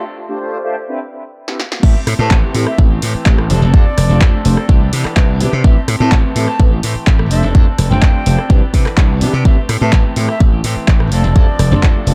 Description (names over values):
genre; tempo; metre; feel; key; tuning
filtered disco house; 126 BPM; 4/4; straight; A minor; A4 = 440 Hz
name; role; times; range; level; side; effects
mellow synth brass; accompaniment; 0.0-12.1 s; A3 to C5; -24 LUFS; equal; chorus, phaser, sidechain pumping, analog delay
punchy analog drum machine; drums; 1.5-12.1 s; crash cymbal, handclaps, hi-hat, rim click, snare drum; -25 LUFS; equal; sidechain pumping on hats, sidechain pumping on cymbals
reedy concert flute; melody; 1.8-12.0 s; D5 to A5; -26 LUFS; equal; sidechain pumping, analog delay
semi-hollow electric guitar; riff; 1.8-12.1 s; E3 to A4; -27 LUFS; equal; sidechain pumping, analog delay
glassy slap bass; bass; 1.8-12.1 s; F1 to C3; -17 LUFS; equal; sidechain pumping, high-pass filter
electronic kick drum; drums; 1.8-11.9 s; none; -12 LUFS; equal; high-pass filter on kick, high-pass filter on room
room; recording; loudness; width
little or no reverb; echo-heavy mix, high-pass filter; -13 LUFS; mono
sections
0.0-1.8 A section; 1.8-12.1 B section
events
break 0.0-1.8; build-up 0.0-1.8; filter sweep 0.0-1.8; drum fill 1.5-1.8; drop 1.8-12.1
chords
0.0 F6; 0.9 Cmaj9; 1.8 Am7; 3.5 F6; 4.7 Cmaj9; 5.6 Am7; 7.3 F6; 8.5 Cmaj9; 9.5 Am7; 11.1 F6